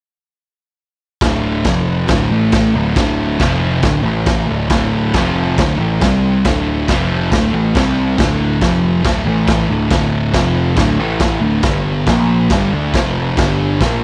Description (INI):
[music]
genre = garage rock duo or trio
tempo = 138 BPM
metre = 4/4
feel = straight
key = unclear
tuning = A4 = 441 Hz
[part]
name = thick fuzz guitar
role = riff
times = 1.2-14.0 s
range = D2 to D4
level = -17 LUFS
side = equal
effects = distortion
[part]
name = growling picked electric bass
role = bass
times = 1.2-14.0 s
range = D1 to D2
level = -24 LUFS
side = equal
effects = overdrive
[part]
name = raw garage drum kit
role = drums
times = 1.2-13.9 s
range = crash cymbal, kick drum, snare drum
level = -20 LUFS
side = equal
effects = none
[sound]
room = little or no reverb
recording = none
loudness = -15 LUFS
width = mono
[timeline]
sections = 1.2-14.0 A section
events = none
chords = 1.2 D5; 1.7 F5; 2.1 D5; 2.3 A5; 2.7 D5; 3.4 F5; 3.8 D5; 4.1 A5; 4.5 D5; 5.1 F5; 5.6 D5; 6.0 C5; 6.4 D5; 6.9 F5; 7.3 D5; 7.7 C5; 8.2 D5; 8.6 F5; 9.0 D5; 9.3 A5; 9.7 D5; 10.3 F5; 10.8 D5; 11.0 A5; 11.4 D5; 11.6 G5; 12.1 Bb5; 12.5 G5; 12.9 F5; 13.4 G5